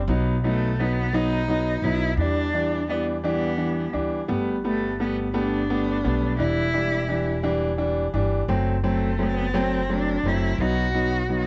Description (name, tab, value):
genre	six-eight pop ballad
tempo	57 BPM (dotted quarters)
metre	6/8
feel	straight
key	E minor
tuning	A4 = 441 Hz
part	upright bass	bass	0.0-11.5 s	E1 to E2	-29 LUFS	equal	none
part	clear concert grand piano	accompaniment	0.1-11.5 s	E3 to D#4	-27 LUFS	equal	cassette tape
part	rich cello	melody	0.4-11.5 s	A3 to F#4	-30 LUFS	equal	cassette tape
room	moderate spring reverb, RT60 1.6 s, small room ambience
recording	home recording on cassette, nothing above 7.9 kHz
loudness	-24 LUFS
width	mono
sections	0.0-11.5 A section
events	none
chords	0.1 B; 2.2 Em7; 4.3 Gadd9; 6.4 Em7; 8.5 F#dim; 10.6 B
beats	| 0.08 1.13 | 2.17 3.23 | 4.29 5.35 | 6.40 7.44 | 8.49 9.53 | 10.58